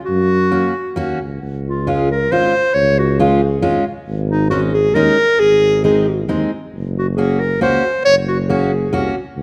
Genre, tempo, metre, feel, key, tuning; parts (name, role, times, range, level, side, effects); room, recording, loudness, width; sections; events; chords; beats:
alpine folk, alpine dance band; 136 BPM; 3/4; straight; Db major; A4 = 441 Hz
clear clarinet; melody; 0.1-9.1 s; Eb4 to Db5; -18 LUFS; equal
mellow tuba; bass; 0.1-9.4 s; Gb1 to F#2; -22 LUFS; equal
fingerpicked steel-string acoustic guitar; accompaniment; 0.5-9.1 s; Ab3 to F#4; -22 LUFS; equal
light reverb; -16 LUFS; mono
0.0-1.4 A section; 1.4-9.4 B section
0.1 F#; 1.4 Db; 4.1 Absus4; 5.4 Ab; 6.7 Gb
| 0.08 0.52 0.97 | 1.42 1.87 2.31 | 2.76 3.19 3.63 | 4.07 4.50 4.94 | 5.39 5.83 6.28 | 6.73 7.18 7.62 | 8.06 8.50 8.94 | 9.38